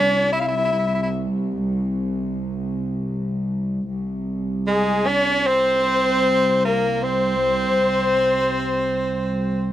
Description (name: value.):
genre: Persian modal ensemble.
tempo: 76 BPM.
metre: 4/4.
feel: straight.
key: C dastgah homayun.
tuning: A4 = 440 Hz.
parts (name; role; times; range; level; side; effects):
edgy tenor saxophone; melody; 0.0-9.7 s; Ab3 to E4; -20 LUFS; right 2 dB; none.
clear kamancheh; second line; 0.0-9.7 s; Ab4 to F5; -23 LUFS; left 5 dB; none.
dark studio cello section; drone; 0.0-9.7 s; C2; -24 LUFS; equal; none.
room: light reverb, small room ambience.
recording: dry, close 1970s-style studio recording.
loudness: -19 LUFS.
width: side -12 dB against mid.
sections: 0.0-9.7 A section.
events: none.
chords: none.